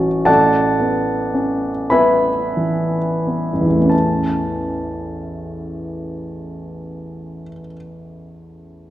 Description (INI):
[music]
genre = classical, impressionist solo piano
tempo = 27-40 BPM (dotted quarters)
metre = 6/8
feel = rubato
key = A major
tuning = A4 = 440 Hz
[part]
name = clear baby grand piano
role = solo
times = 0.0-8.9 s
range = A1 to C#6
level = -17 LUFS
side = equal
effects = none
[sound]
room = moderate concert hall reverb, RT60 2.1 s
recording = none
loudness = -15 LUFS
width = side -14 dB against mid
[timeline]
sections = 0.0-3.9 A section; 3.9-7.5 B section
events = slowing down 0.0-3.9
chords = 0.3 Aadd9